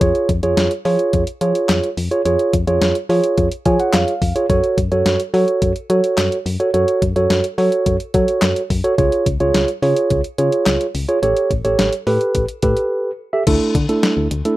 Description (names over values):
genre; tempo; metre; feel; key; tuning
synth-pop; 107 BPM; 4/4; straight; F# harmonic minor; A4 = 440 Hz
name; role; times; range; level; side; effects
mellow tine electric piano; accompaniment; 0.0-14.6 s; A3 to G#5; -16 LUFS; right 2 dB; none
solid FM bass; bass; 0.0-14.4 s; A1 to F#3; -20 LUFS; left 2 dB; none
detuned 8-bit digital drum machine; drums; 0.0-14.6 s; crash cymbal, handclaps, hi-hat, kick drum, snare drum; -20 LUFS; left 2 dB; none
room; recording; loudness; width
moderate studio reverb, RT60 0.6 s; rough home demo mix; -15 LUFS; side -16 dB against mid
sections
0.0-13.5 A section; 13.5-14.6 B section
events
tine electric piano fill 3.4-4.5; break 12.9-13.5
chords
0.0 C#/E#; 4.5 F#m; 9.0 C#; 11.2 A7; 13.5 Dsus2